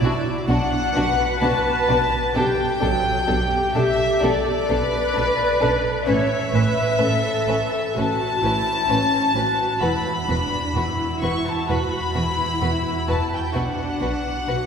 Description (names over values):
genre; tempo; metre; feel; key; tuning
cinematic, emotional film score for orchestra; 64 BPM; 4/4; rubato; A mixolydian; A4 = 440 Hz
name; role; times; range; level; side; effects
warm studio violin section; melody; 0.0-14.7 s; D5 to C#6; -23 LUFS; left 3 dB; none
warm studio violin section; second line; 0.0-14.6 s; C#4 to B4; -27 LUFS; left 2 dB; none
warm studio viola section; accompaniment; 0.0-14.7 s; F#3 to C#5; -24 LUFS; equal; none
dark studio double bass section; bass; 0.0-14.6 s; E1 to B1; -27 LUFS; right 2 dB; none
warm studio cello section; bass; 0.0-14.6 s; E2 to B2; -28 LUFS; right 3 dB; none
room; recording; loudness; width
wet church reverb, RT60 2.8 s; recorded in a church or concert hall; -18 LUFS; side -6 dB against mid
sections
0.0-14.7 A section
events
none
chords
0.0 Bm; 2.4 Gadd9/B; 6.1 Aadd9; 9.8 Esus2; 13.6 Bm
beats
0.49 1.42 | 2.35 3.28 4.22 5.16 | 6.08 6.99 7.96 8.89 | 9.82 10.76 11.69 12.63 | 13.55 14.48